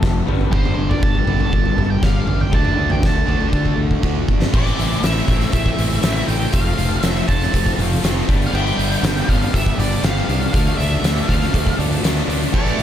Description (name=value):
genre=quiet-loud alternative rock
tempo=120 BPM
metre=4/4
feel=straight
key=unclear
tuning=A4 = 440 Hz
part: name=electric guitar through a small old amp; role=arpeggios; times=0.0-0.5 s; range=F3 to B4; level=-30 LUFS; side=right 2 dB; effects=lush chorus, slapback echo
part: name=distorted electric guitar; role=riff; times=0.0-12.8 s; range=F2 to F4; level=-25 LUFS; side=left 12 dB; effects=overdrive
part: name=fuzz fingered electric bass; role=bass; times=0.0-12.8 s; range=F1 to D3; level=-21 LUFS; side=equal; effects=overdrive
part: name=oversized low-tuned drum kit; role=drums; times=0.0-12.8 s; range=crash cymbal, hi-hat, kick drum, snare drum, toms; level=-19 LUFS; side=equal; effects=none
part: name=octave-fuzz lead guitar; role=melody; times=0.5-12.8 s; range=C5 to A5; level=-25 LUFS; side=right 1 dB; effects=distortion, slapback echo
part: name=distorted electric guitar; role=riff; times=0.5-12.8 s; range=G2 to G4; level=-26 LUFS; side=right 11 dB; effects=overdrive
part: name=distorted electric guitar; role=riff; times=12.5-12.8 s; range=A2 to A3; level=-23 LUFS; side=right 1 dB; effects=distortion
room=small room ambience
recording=none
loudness=-15 LUFS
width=side -10 dB against mid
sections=0.0-4.5 A section; 4.5-12.8 B section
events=drum fill 3.5-4.5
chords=0.3 G; 2.5 D5; 4.5 Am; 6.5 F; 8.3 G; 10.5 Dm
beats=0.03 | 0.53 1.03 1.53 2.03 | 2.53 3.03 3.54 4.04 | 4.54 5.04 5.54 6.04 | 6.54 7.04 7.54 8.04 | 8.54 9.04 9.54 10.04 | 10.54 11.04 11.54 12.04 | 12.54